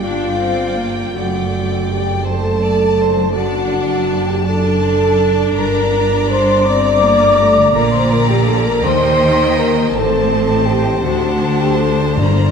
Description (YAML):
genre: classical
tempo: 54 BPM (dotted quarters)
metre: 6/8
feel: rubato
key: unclear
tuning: A4 = 440 Hz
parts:
  - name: rich chamber violin section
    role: melody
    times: 0.0-12.5 s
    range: G5 to Bb5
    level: -26 LUFS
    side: left 3 dB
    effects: none
  - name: clear chamber violin section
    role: second line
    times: 0.0-12.5 s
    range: C5 to Eb5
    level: -26 LUFS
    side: left 1 dB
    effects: none
  - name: large flute ensemble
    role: second line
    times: 0.0-12.5 s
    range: D5 to D6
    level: -23 LUFS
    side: left 2 dB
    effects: none
  - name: rich chamber viola section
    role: accompaniment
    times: 0.0-12.5 s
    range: A3 to D4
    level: -23 LUFS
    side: equal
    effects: none
  - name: mellow French horn section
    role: sustained chords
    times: 0.0-12.5 s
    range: D4 to D5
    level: -16 LUFS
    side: left 1 dB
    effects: none
  - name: concert harp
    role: arpeggios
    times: 0.0-12.5 s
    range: F#2 to Bb5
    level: -24 LUFS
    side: left 6 dB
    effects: none
  - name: clear chamber cello section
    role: bass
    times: 0.0-12.5 s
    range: D2 to Eb3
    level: -21 LUFS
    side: right 4 dB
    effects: none
  - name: clear chamber double bass section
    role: bass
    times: 0.0-12.5 s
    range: F#1 to Eb2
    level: -21 LUFS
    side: right 4 dB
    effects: none
  - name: timpani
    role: percussion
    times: 12.2-12.5 s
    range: G2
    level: -18 LUFS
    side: left 1 dB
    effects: none
room: wet concert hall reverb, RT60 2.3 s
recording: minimal, uncompressed stereo recording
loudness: -12 LUFS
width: side -6 dB against mid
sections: 0.0-12.5 A section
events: none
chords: 0.0 Gm; 1.1 D/F#; 3.4 D7/F#; 5.6 Gm; 7.7 Bbmaj7; 8.8 Eb; 9.9 Am7b5; 11.0 D7